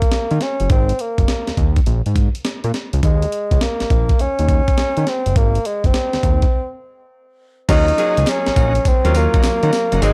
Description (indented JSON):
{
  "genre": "R&B, new jack swing",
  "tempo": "103 BPM",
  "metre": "4/4",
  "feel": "swing 66% on 16ths",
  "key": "Eb dorian",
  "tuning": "A4 = 435 Hz",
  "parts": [
    { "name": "warm bassoon", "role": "melody", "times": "0.0-10.1 s", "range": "Ab3 to Eb4", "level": "-22 LUFS", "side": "equal", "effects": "none" },
    { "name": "breakbeat sampler-style drum kit", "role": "drums", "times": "0.0-10.1 s", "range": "crash cymbal, hi-hat, kick drum, snare drum, tambourine", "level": "-20 LUFS", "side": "equal", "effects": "none" },
    { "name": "fat analog bass", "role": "bass", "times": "0.3-10.1 s", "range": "Gb1 to Eb3", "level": "-20 LUFS", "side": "equal", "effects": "none" },
    { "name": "bright grand piano", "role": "accompaniment", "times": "7.7-10.1 s", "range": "Gb3 to Ab4", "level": "-26 LUFS", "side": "equal", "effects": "none" },
    { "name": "tonewheel organ", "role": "stabs", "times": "7.7-10.1 s", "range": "C4 to Bb4", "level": "-32 LUFS", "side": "equal", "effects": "fast rotary speaker" },
    { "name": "group handclap", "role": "percussion", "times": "8.3-9.6 s", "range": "none", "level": "-37 LUFS", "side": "equal", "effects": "none" }
  ],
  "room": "little or no reverb",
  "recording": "dark, warm production",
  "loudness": "-17 LUFS",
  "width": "mono",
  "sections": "0.0-7.7 A section; 7.7-10.1 B section",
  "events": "break 6.5-7.7",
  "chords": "0.0 Ebm7; 0.7 Ab5; 1.9 Bbm7; 3.0 Eb7(no3); 5.4 Ab7; 6.5 N.C.; 7.7 Ebm7",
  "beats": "0.12 | 0.70 1.28 1.86 2.45 | 3.03 3.61 4.19 4.78 | 5.36 5.94 6.52 7.11 | 7.69 8.27 8.85 9.44 | 10.02"
}